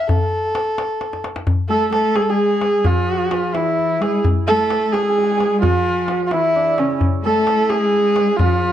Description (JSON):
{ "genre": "Persian modal ensemble", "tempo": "86 BPM (dotted quarters)", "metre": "6/8", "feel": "straight", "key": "unclear", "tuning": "A4 = 437 Hz", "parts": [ { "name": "warm kamancheh", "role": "melody", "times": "0.0-8.7 s", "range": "C#4 to A4", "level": "-18 LUFS", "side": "right 1 dB", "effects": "slapback echo, plate reverb" }, { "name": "tombak", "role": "percussion", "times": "0.1-8.5 s", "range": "none", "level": "-20 LUFS", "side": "left 2 dB", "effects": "none" }, { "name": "rich cello", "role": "second line", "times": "1.7-8.7 s", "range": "C#3 to A3", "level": "-22 LUFS", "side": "left 4 dB", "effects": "none" }, { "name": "santur", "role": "second line", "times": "1.7-8.7 s", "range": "C#4 to A4", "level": "-24 LUFS", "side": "right 4 dB", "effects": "none" } ], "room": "moderate small room reverb, RT60 0.6 s", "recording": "dark, warm production, faint mains hum", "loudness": "-15 LUFS", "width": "side -11 dB against mid", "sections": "0.0-1.5 A section; 1.5-8.7 B section", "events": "drum fill 1.0-1.5", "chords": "none" }